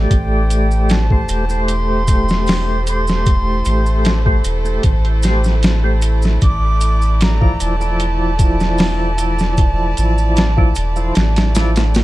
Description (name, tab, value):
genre	trip hop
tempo	76 BPM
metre	4/4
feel	straight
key	A minor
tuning	A4 = 435 Hz
part	percussive tonewheel organ	accompaniment	0.0-11.9 s	F3 to D5	-22 LUFS	equal	slow rotary speaker, tremolo, tape echo
part	round analog bass	bass	0.0-12.0 s	E1 to A1	-16 LUFS	equal	tube saturation
part	silver concert flute	melody	0.1-12.0 s	G5 to D6	-24 LUFS	right 2 dB	vintage 12-bit sampler grit, tape echo
part	rich chamber violin section	sustained chords	0.1-12.0 s	A3 to D5	-28 LUFS	right 1 dB	none
part	trip hop sampler-style drum kit	drums	0.1-12.0 s	hi-hat, kick drum, snare drum	-16 LUFS	equal	none
part	maracas	percussion	0.1-12.0 s	none	-33 LUFS	equal	none
room	small room ambience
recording	dark, warm production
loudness	-13 LUFS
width	side -17 dB against mid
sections	0.0-12.0 A section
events	kick drops out 11.2-12.0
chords	0.1 Am7; 6.4 Dmadd9